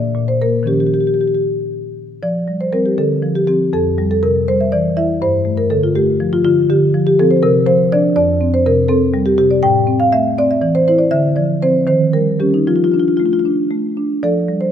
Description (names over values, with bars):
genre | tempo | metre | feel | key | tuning
classical, contemporary piece for solo marimba | 75-83 BPM (dotted quarters) | 6/8 | straight | F major | A4 = 440 Hz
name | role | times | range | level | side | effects
marimba with soft mallets | solo | 0.0-14.7 s | F2 to G5 | -13 LUFS | equal | none
room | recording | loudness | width
moderate concert hall reverb, RT60 2.1 s | close, detailed microphones | -12 LUFS | side -9 dB against mid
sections
0.0-2.2 A section; 2.2-14.2 B section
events
none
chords
0.0 Bbmaj9#11; 0.7 Eb9; 2.2 Fsus2; 3.0 Dm7; 3.7 Fsus2; 5.2 Gsus2; 6.7 Dm7; 7.4 Csus24; 8.2 Fsus2; 9.6 Am; 11.1 Dm7; 11.9 Eb7; 12.7 F6